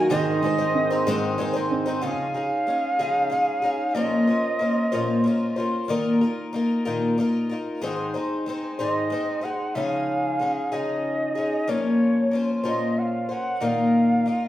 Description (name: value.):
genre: acoustic folk duo or small band.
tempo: 62 BPM (dotted quarters).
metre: 6/8.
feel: straight.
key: Db major.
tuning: A4 = 440 Hz.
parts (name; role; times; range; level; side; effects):
reedy shakuhachi; melody; 0.0-5.6, 8.8-14.5 s; Db5 to Gb5; -25 LUFS; right 1 dB; none.
picked twelve-string acoustic guitar; accompaniment; 0.0-14.5 s; Ab2 to C5; -23 LUFS; left 1 dB; none.
pedal harmonium; sustained chords; 0.0-2.0 s; Ab2 to C4; -31 LUFS; equal; none.
felt-muted upright piano; arpeggios; 0.0-2.1 s; Eb3 to Ab4; -26 LUFS; right 4 dB; none.
room: wet large studio reverb, RT60 1.0 s.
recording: heard from further back in the room.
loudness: -21 LUFS.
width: side -13 dB against mid.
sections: 0.0-2.0 A section; 2.0-9.8 B section; 9.8-14.5 C section.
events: none.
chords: 0.1 Ab; 2.0 Dbadd9; 4.0 Bbmadd9; 5.9 Ebsus2/Bb; 7.8 Ab; 9.8 Dbadd9; 11.7 Bbmadd9; 13.6 Ebsus2/Bb.